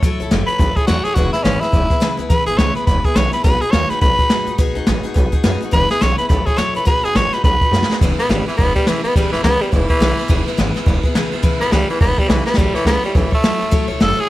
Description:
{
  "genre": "rockabilly",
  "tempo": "210 BPM",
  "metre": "4/4",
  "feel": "swing 60% on 8ths",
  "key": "E major",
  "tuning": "A4 = 439 Hz",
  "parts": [
    { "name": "picked steel-string acoustic guitar", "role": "accompaniment", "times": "0.0-14.3 s", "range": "C#3 to C#5", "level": "-23 LUFS", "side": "left 3 dB", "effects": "none" },
    { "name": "upright bass", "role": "bass", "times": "0.0-14.2 s", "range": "E1 to G#2", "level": "-21 LUFS", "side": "equal", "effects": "none" },
    { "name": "jazz brush drum kit", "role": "drums", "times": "0.0-14.2 s", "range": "hi-hat, kick drum, ride cymbal, snare drum", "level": "-17 LUFS", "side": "equal", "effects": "none" },
    { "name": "raspy tenor saxophone", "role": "melody", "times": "0.5-14.3 s", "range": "E3 to C#5", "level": "-18 LUFS", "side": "equal", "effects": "none" }
  ],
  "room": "studio reverb",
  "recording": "none",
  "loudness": "-14 LUFS",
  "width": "side -16 dB against mid",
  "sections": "0.0-8.0 A section; 8.0-14.3 B section",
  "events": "drum fill 7.7, 12.4; tenor saxophone solo 8.0-14.3",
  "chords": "0.0 A6; 1.2 E6; 3.4 B6; 5.7 E6; 6.3 A6; 6.9 B6; 8.0 E6; 12.6 A6"
}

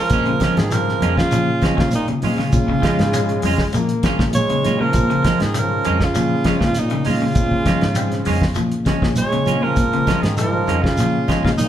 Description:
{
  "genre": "afrobeat",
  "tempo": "99 BPM",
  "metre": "4/4",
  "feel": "straight",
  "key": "Bb minor",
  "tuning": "A4 = 437 Hz",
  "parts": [
    { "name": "bright alto saxophone", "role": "melody", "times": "0.0-11.7 s", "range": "Eb4 to Db5", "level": "-23 LUFS", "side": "right 2 dB", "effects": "none" },
    { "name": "warm trombone", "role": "second line", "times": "0.0-11.7 s", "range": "Bb2 to Ab3", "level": "-26 LUFS", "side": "right 3 dB", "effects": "none" },
    { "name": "semi-hollow electric guitar", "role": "stabs", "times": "0.0-11.5 s", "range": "Ab3 to F4", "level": "-27 LUFS", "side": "right 6 dB", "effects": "none" },
    { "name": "combo organ", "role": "accompaniment", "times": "0.1-11.6 s", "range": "Db3 to Eb4", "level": "-29 LUFS", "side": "left 4 dB", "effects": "none" },
    { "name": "fingered electric bass", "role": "bass", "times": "0.1-11.7 s", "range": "F2 to Bb2", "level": "-23 LUFS", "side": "left 1 dB", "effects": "none" },
    { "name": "cloth-damped thuddy drum kit", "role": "drums", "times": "0.1-11.7 s", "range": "hi-hat, kick drum, snare drum", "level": "-22 LUFS", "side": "equal", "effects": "none" },
    { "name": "congas", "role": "percussion", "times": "0.1-11.7 s", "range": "none", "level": "-28 LUFS", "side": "right 2 dB", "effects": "none" },
    { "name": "shekere", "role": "percussion", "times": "0.1-11.7 s", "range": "none", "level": "-28 LUFS", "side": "right 1 dB", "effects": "none" },
    { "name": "electric guitar at the edge of break-up", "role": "arpeggios", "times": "0.3-11.6 s", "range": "Db3 to Ab3", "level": "-25 LUFS", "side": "left 3 dB", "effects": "tremolo" },
    { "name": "clear bass trombone", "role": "second line", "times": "2.8-4.2 s", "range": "Ab3 to Bb3", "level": "-26 LUFS", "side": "left 3 dB", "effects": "none" }
  ],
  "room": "wet large studio reverb, RT60 1.1 s",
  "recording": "band playing live in one room",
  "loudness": "-15 LUFS",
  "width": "side -11 dB against mid",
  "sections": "0.1-11.7 A section",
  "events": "none",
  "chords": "0.1 Bbm7"
}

